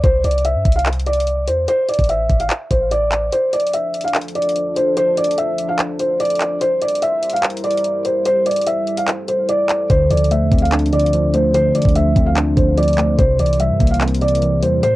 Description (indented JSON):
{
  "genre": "hip hop, trap",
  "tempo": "146 BPM",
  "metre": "4/4",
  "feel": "half-time",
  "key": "D minor",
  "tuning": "A4 = 440 Hz",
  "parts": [
    { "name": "felt-muted upright piano", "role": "melody", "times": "0.0-15.0 s", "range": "C5 to F5", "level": "-17 LUFS", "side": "equal", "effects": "analog delay" },
    { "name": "clean 808-style bass", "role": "bass", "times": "0.0-3.3, 9.9-14.8 s", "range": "A1 to G2", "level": "-20 LUFS", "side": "equal", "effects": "none" },
    { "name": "trap drum kit", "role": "drums", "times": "0.0-14.9 s", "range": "handclaps, hi-hat, kick drum", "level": "-20 LUFS", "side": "equal", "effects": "cassette tape" },
    { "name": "dark analog pad", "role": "sustained chords", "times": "3.8-15.0 s", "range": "F3 to C5", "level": "-27 LUFS", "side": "right 1 dB", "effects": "chorus, cassette tape" },
    { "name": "mellow tine electric piano", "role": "accompaniment", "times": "9.9-15.0 s", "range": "A2 to D4", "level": "-18 LUFS", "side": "equal", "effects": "medium stereo tremolo, cassette tape" }
  ],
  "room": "light reverb",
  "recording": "home recording on cassette",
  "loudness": "-14 LUFS",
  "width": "side -17 dB against mid",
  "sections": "0.0-15.0 A section",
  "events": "break 0.0-3.3; kick muted 3.3-9.9",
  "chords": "0.0 N.C.; 1.7 Amadd11; 3.3 Dm7; 6.6 C7; 8.3 Am7; 9.9 Dm7; 13.2 C7"
}